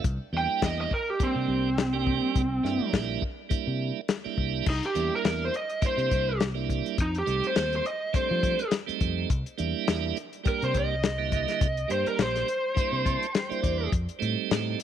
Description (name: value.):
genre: straight-eighth soul blues.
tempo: 104 BPM.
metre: 4/4.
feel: swing 56% on 16ths.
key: C mixolydian.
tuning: A4 = 439 Hz.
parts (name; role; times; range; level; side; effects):
tonewheel organ; accompaniment; 0.0-14.8 s; D3 to A5; -32 LUFS; right 13 dB; slow rotary speaker.
fingered electric bass; bass; 0.0-14.7 s; Bb1 to F3; -31 LUFS; equal; none.
warm soul drum kit; drums; 0.0-14.8 s; crash cymbal, hi-hat, kick drum, snare drum; -28 LUFS; left 3 dB; none.
lead guitar through a small cranked amp; melody; 0.4-13.9 s; C4 to G5; -28 LUFS; equal; overdrive.
room: little or no reverb.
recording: 1960s-style stereo.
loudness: -25 LUFS.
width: side -10 dB against mid.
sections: 0.0-4.7 A section; 4.7-14.8 B section.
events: lead electric guitar solo 4.7-14.8; tonewheel organ fill 12.8-13.9.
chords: 0.0 C9; 7.0 F9; 9.3 C9; 13.9 F9.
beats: | 0.04 0.62 1.20 1.78 | 2.36 2.94 3.51 4.09 | 4.67 5.25 5.83 6.41 | 6.98 7.56 8.14 8.72 | 9.30 9.88 10.46 11.04 | 11.61 12.19 12.77 13.35 | 13.93 14.51.